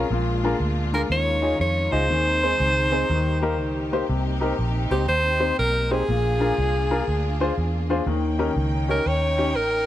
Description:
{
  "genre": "gospel",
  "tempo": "121 BPM",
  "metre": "4/4",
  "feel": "swing 65% on 8ths",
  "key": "unclear",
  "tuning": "A4 = 440 Hz",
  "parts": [
    { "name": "clear upright piano", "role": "accompaniment", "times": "0.0-9.5 s", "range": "Bb2 to Eb5", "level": "-26 LUFS", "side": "left 3 dB", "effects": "none" },
    { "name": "warm studio string section", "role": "sustained chords", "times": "0.0-9.9 s", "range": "G3 to G5", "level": "-31 LUFS", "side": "equal", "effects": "none" },
    { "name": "vintage muted fingered electric bass", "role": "bass", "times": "0.0-9.9 s", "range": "A1 to F2", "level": "-25 LUFS", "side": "right 1 dB", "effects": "none" },
    { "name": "bright alto saxophone", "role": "melody", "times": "0.9-9.9 s", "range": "G4 to Db5", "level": "-23 LUFS", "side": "equal", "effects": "none" }
  ],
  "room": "light reverb, small room reverb",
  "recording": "none",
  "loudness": "-20 LUFS",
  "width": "side -13 dB against mid",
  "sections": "0.0-9.9 A section",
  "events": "none",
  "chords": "0.1 Bb7; 1.1 Eb9sus4; 2.1 Ab/Eb; 3.1 Eb; 4.1 Cm7; 6.1 Bb7; 8.1 Eb7"
}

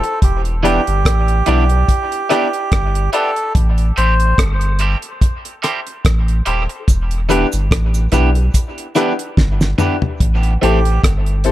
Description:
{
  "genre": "dub reggae",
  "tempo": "72 BPM",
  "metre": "4/4",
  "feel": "swing 56% on 16ths",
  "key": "A minor",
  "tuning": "A4 = 440 Hz",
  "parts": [
    { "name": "melodica", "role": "melody", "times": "0.0-4.4, 10.6-11.0 s", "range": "G4 to C5", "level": "-21 LUFS", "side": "right 2 dB", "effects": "dub echo" },
    { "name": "electric guitar at the edge of break-up", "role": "accompaniment", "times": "0.0-10.8 s", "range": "E3 to G4", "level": "-22 LUFS", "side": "right 6 dB", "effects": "high-pass filter, dub echo" },
    { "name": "clear upright piano", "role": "stabs", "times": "0.0-11.5 s", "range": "C4 to D5", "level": "-22 LUFS", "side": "left 7 dB", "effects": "high-pass filter, dub echo" },
    { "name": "damped 70s drum kit", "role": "drums", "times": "0.0-11.5 s", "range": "hi-hat, kick drum, rim click, snare drum, toms", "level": "-16 LUFS", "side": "equal", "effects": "none" },
    { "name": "warm sub bass", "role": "bass", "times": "0.2-11.5 s", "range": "D#1 to B1", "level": "-15 LUFS", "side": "equal", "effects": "none" },
    { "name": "cabasa", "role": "percussion", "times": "6.9-10.0 s", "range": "none", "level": "-32 LUFS", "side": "right 6 dB", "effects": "none" }
  ],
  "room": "little or no reverb",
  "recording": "none",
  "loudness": "-13 LUFS",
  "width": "side -14 dB against mid",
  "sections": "0.0-11.5 A section",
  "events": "break 0.0-6.9; filter sweep 0.2-6.9; drum fill 9.4-10.2; part muted 10.2-11.5",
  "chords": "0.2 Em7; 3.5 Am7; 6.9 Em7; 10.2 Am7"
}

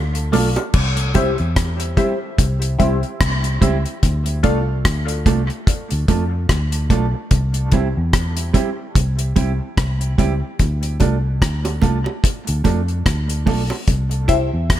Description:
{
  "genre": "dub reggae",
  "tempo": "73 BPM",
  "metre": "4/4",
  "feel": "swing 57% on 16ths",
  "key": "C major",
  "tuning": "A4 = 444 Hz",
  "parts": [
    { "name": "vintage muted fingered electric bass", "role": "bass", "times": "0.0-14.8 s", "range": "B1 to F2", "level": "-20 LUFS", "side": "equal", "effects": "none" },
    { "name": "deep reggae drum kit", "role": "drums", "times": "0.1-14.8 s", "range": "crash cymbal, hi-hat, kick drum, rim click", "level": "-18 LUFS", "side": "equal", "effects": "none" },
    { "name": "mellow electric guitar", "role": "accompaniment", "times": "0.3-13.7 s", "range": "G3 to A4", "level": "-24 LUFS", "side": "right 6 dB", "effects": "spring reverb, dub echo" },
    { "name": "filtered dub chord stab", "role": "stabs", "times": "0.3-4.7, 14.3-14.5 s", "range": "E4 to F5", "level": "-24 LUFS", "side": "left 4 dB", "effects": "phaser, dub echo" },
    { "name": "bongos", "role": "percussion", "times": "0.3-1.4, 11.0-14.5 s", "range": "none", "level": "-30 LUFS", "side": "right 4 dB", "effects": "dub echo" }
  ],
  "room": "studio ambience",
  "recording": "none",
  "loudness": "-16 LUFS",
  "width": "side -12 dB against mid",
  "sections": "0.7-14.8 A section",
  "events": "break 0.0-0.7; part muted 0.7-10.6",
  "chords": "0.0 Dm; 0.7 C; 4.0 Dm; 7.3 C; 10.6 Dm; 13.9 C"
}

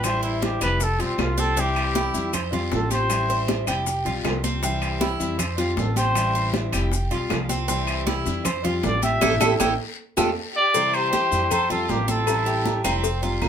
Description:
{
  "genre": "latin, Cuban son and guajira",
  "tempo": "157 BPM",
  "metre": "4/4",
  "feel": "straight",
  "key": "unclear",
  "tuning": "A4 = 440 Hz",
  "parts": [
    { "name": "breathy trumpet", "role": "melody", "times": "0.0-3.4, 5.8-6.5, 8.9-12.8 s", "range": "C4 to E5", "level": "-23 LUFS", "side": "equal", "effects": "none" },
    { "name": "picked steel-string acoustic guitar", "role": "accompaniment", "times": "0.0-13.5 s", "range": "C3 to F4", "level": "-29 LUFS", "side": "left 3 dB", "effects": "none" },
    { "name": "Cuban tres", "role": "arpeggios", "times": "0.0-13.5 s", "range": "C4 to C5", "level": "-27 LUFS", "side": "right 3 dB", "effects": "none" },
    { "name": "upright bass", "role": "bass", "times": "0.0-13.5 s", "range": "F1 to F2", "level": "-27 LUFS", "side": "equal", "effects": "none" },
    { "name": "bongos and cowbell", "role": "percussion", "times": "0.0-13.5 s", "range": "none", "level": "-32 LUFS", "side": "left 6 dB", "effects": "none" },
    { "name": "claves", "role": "percussion", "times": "0.0-13.5 s", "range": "none", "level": "-34 LUFS", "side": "left 6 dB", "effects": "none" },
    { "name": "congas", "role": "percussion", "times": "0.0-13.5 s", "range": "none", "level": "-30 LUFS", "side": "equal", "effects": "none" },
    { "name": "guiro", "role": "percussion", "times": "0.0-13.5 s", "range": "none", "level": "-38 LUFS", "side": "left 7 dB", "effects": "none" },
    { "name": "maracas", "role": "percussion", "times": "0.0-13.5 s", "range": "none", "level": "-34 LUFS", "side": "left 6 dB", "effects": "none" },
    { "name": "timbales and agogo bells", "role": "percussion", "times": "0.0-13.5 s", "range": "none", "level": "-32 LUFS", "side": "right 5 dB", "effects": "none" },
    { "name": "rich studio violin section", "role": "second line", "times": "10.6-12.8 s", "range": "C4 to A4", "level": "-32 LUFS", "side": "left 2 dB", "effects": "none" }
  ],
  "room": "moderate studio ambience, RT60 0.5 s",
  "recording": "band playing live in one room",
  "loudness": "-20 LUFS",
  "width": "side -8 dB against mid",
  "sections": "0.0-10.7 A section; 10.7-13.5 B section",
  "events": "trumpet solo 0.0-10.7; band accent 9.2-10.7; drum fill 10.0-10.7",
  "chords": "0.0 Am7; 0.8 Fsus2; 1.6 C; 2.3 Fadd9; 3.1 Am7; 3.9 Fsus2; 4.6 C; 5.4 Fadd9; 6.2 Am7; 6.9 Fsus2; 7.7 C; 8.5 Fadd9; 9.2 Am7; 10.0 Fadd9; 10.7 C; 11.5 Fadd9; 12.3 Am7"
}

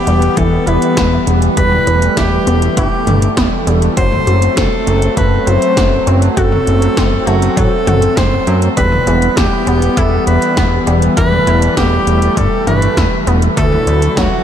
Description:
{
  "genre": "synthwave",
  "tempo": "100 BPM",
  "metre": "4/4",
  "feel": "straight",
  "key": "E minor",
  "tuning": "A4 = 441 Hz",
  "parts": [
    { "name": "breathy alto saxophone", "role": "melody", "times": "0.0-14.4 s", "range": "F#4 to C5", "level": "-16 LUFS", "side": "equal", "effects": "tape echo" },
    { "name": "chorused pulse-width pad", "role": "sustained chords", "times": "0.0-14.4 s", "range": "D3 to E4", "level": "-18 LUFS", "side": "equal", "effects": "vintage 12-bit sampler grit, sidechain pumping" },
    { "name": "wide unison pluck", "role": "arpeggios", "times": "0.0-14.4 s", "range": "E3 to F#4", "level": "-20 LUFS", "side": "left 1 dB", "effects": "diffuse ambient delay" },
    { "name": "fat analog bass", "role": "bass", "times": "0.1-14.3 s", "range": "E1 to F#2", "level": "-14 LUFS", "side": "equal", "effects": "none" },
    { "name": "80s electronic pad drums", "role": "drums", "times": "0.1-14.3 s", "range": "hi-hat, snare drum, toms", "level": "-21 LUFS", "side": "equal", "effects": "gated reverb on snare and toms" },
    { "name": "electronic kick drum", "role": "drums", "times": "0.4-14.3 s", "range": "none", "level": "-18 LUFS", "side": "equal", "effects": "none" },
    { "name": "riser", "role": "sound effects", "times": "14.4 s", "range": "none", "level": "barely audible", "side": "none", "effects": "none" }
  ],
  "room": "moderate cathedral reverb, RT60 5.8 s",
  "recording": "dreamy mix soaked in reverb",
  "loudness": "-10 LUFS",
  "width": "side -9 dB against mid",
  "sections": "0.0-14.4 A section",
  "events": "none",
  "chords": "0.0 Em; 4.0 F#dim; 8.8 Em; 13.6 Dadd9"
}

